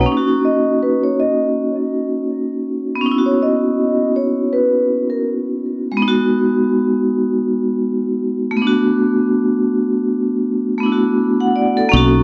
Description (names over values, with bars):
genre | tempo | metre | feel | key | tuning
lo-fi hip hop | 81 BPM | 4/4 | swing 57% on 16ths | B major | A4 = 440 Hz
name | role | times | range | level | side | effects
vibraphone with hard mallets | accompaniment | 0.0-12.2 s | G#3 to F#5 | -18 LUFS | equal | cassette tape, plate reverb
woody fretless electric bass | bass | 0.0, 11.9-12.2 s | B1 | -17 LUFS | equal | none
vibraphone with soft mallets | melody | 0.4-5.2 s | A#4 to D#5 | -22 LUFS | equal | plate reverb, analog delay
room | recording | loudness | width
moderate small room ambience, RT60 0.5 s | worn, warbling old tape, cassette tape, warbly pitch drift | -17 LUFS | mono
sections
0.1-11.9 A section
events
none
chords
0.1 Bmaj9; 6.0 G#m7; 8.6 D69/A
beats
| 0.07 0.81 1.55 2.29 | 3.04 3.78 4.52 5.26 | 6.00 6.74 7.48 8.22 | 8.96 9.70 10.44 11.18 | 11.92